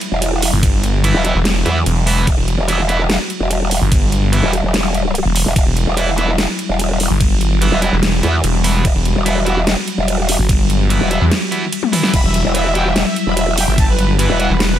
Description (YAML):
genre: heavy wobble dubstep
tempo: 146 BPM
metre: 4/4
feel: half-time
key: E minor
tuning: A4 = 440 Hz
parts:
  - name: lush unison pad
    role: sustained chords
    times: 0.0-14.8 s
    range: F#3 to F#4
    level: -22 LUFS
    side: left 3 dB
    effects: chorus, sidechain pumping
  - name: dubstep drum kit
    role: drums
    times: 0.0-14.7 s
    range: crash cymbal, hi-hat, snare drum, toms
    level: -20 LUFS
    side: right 1 dB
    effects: none
  - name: growl bass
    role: bass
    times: 0.1-14.5 s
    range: E1 to E2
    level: -16 LUFS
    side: equal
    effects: chorus, overdrive
  - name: snarling distorted saw bass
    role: bass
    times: 0.5-14.8 s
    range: E1 to E2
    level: -15 LUFS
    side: equal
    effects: distortion, overdrive
  - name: electronic kick drum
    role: drums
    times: 0.6-13.9 s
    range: none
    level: -15 LUFS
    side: equal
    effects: none
  - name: distorted electric guitar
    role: stabs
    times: 1.0-14.5 s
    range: E3 to E4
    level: -22 LUFS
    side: right 3 dB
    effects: overdrive, ping-pong delay
  - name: soft supersaw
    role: melody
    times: 12.1-14.8 s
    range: B4 to B5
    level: -22 LUFS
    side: right 2 dB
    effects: ping-pong delay
room: digital ambience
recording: none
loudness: -13 LUFS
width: side -11 dB against mid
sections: 0.0-14.8 A section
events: break 11.3-12.1; drum fill 11.8-12.1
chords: 0.0 Emadd9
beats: 0.22 | 0.63 1.04 1.45 1.86 | 2.27 2.69 3.10 3.51 | 3.92 4.33 4.74 5.15 | 5.56 5.97 6.38 6.79 | 7.21 7.62 8.03 8.44 | 8.85 9.26 9.67 10.08 | 10.49 10.90 11.31 11.73 | 12.14 12.55 12.96 13.37 | 13.78 14.19 14.60